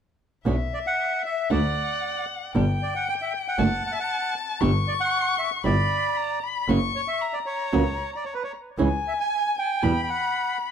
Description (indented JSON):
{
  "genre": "tango",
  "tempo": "115 BPM",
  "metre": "4/4",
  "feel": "rubato",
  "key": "B harmonic minor",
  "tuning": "A4 = 440 Hz",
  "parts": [
    { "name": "warm violin", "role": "second line", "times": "0.5-10.7 s", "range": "E5 to C#6", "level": "-28 LUFS", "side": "left 6 dB", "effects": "none" },
    { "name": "flamenco guitar", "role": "accompaniment", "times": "0.5-9.9 s", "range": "B2 to G4", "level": "-24 LUFS", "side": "right 4 dB", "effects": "none" },
    { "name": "bright double bass", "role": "bass", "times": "0.5-10.0 s", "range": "F#1 to E2", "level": "-25 LUFS", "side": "equal", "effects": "none" },
    { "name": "bandoneon", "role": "melody", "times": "0.7-10.6 s", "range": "B4 to G#5", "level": "-27 LUFS", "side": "right 2 dB", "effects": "plate reverb, analog delay" }
  ],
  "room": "light reverb",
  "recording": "none",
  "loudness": "-22 LUFS",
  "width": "side -8 dB against mid",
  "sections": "0.5-10.7 A section",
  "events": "none",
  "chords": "0.5 B5; 1.5 D; 2.5 G5; 3.6 D/F#; 4.6 G5; 5.7 Em/G (rootless); 6.7 F#; 8.8 C#m; 9.8 Em"
}